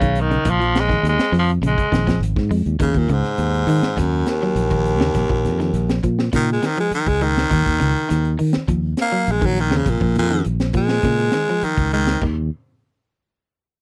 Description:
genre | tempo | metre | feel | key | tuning
afrobeat | 102 BPM | 4/4 | straight | Eb minor | A4 = 440 Hz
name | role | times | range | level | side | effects
raspy tenor saxophone | melody | 0.0-2.2 s | Db3 to Ab3 | -22 LUFS | equal | none
electric guitar at the edge of break-up | arpeggios | 0.0-12.4 s | Db3 to Ab3 | -27 LUFS | equal | none
fingered electric bass | bass | 0.0-12.5 s | Ab1 to Eb3 | -22 LUFS | equal | none
crunchy breakbeat drum kit | drums | 0.0-12.4 s | crash cymbal, hi-hat, kick drum, snare drum | -26 LUFS | equal | none
raspy baritone saxophone | melody | 2.8-12.2 s | Eb2 to Bb3 | -23 LUFS | equal | none
room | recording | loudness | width
little or no reverb | dry, close 1970s-style studio recording | -19 LUFS | mono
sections
0.0-2.8 A section; 2.8-12.2 B section; 12.2-13.8 C section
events
baritone saxophone solo 2.8-12.2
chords
0.5 Bbm7; 2.8 Eb7(no3); 5.2 Bbm; 7.5 Eb7(no3); 9.9 Bbm7; 12.2 N.C.

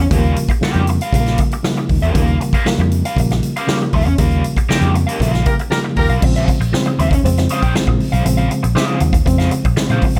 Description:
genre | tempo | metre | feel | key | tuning
funk | 118 BPM | 4/4 | straight | Bb dorian | A4 = 440 Hz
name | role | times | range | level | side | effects
raw garage guitar | accompaniment | 0.0-10.2 s | Db4 to G5 | -25 LUFS | equal | wah, overdrive
vintage muted fingered electric bass | bass | 0.0-10.2 s | Bb1 to Bb2 | -19 LUFS | equal | none
reed electric piano | stabs | 0.1-10.2 s | C3 to C4 | -22 LUFS | equal | overdrive, fast tremolo
swinging big-band drum kit | drums | 0.1-10.2 s | crash cymbal, hi-hat, kick drum, snare drum | -21 LUFS | equal | none
mellow horn section | second line | 5.5-6.1 s | F4 to Bb4 | -23 LUFS | equal | none
room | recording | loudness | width
light reverb | none | -16 LUFS | mono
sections
0.0-6.2 A section; 6.2-10.2 B section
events
band accent 4.2-6.2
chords
0.0 Eb9; 6.2 Bbm9

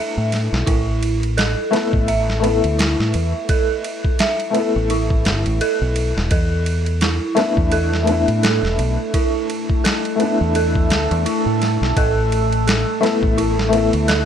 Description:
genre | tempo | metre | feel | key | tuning
trip hop | 85 BPM | 4/4 | swing 57% on 16ths | unclear | A4 = 440 Hz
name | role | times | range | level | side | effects
felt-muted upright piano | accompaniment | 0.0-14.3 s | A3 to A4 | -21 LUFS | left 3 dB | tremolo, tape echo
dark detuned synth bell | arpeggios | 0.0-14.3 s | E4 to E5 | -23 LUFS | right 3 dB | chorus, phaser, ping-pong delay
deep dub fingered electric bass | bass | 0.2-14.2 s | E1 to A2 | -20 LUFS | equal | none
boom bap sampler-style drum kit | drums | 0.3-14.3 s | kick drum, ride cymbal, snare drum | -22 LUFS | equal | vintage 12-bit sampler grit, studio reverb
deep dark ambient pad | sustained chords | 8.5-14.3 s | A3 to A4 | -24 LUFS | right 1 dB | chorus, built-in reverb
room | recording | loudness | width
light reverb | none | -16 LUFS | side -8 dB against mid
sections
0.0-14.3 A section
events
none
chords
0.0 E7sus4; 0.7 Asus2; 6.3 E7sus4; 12.0 Asus2

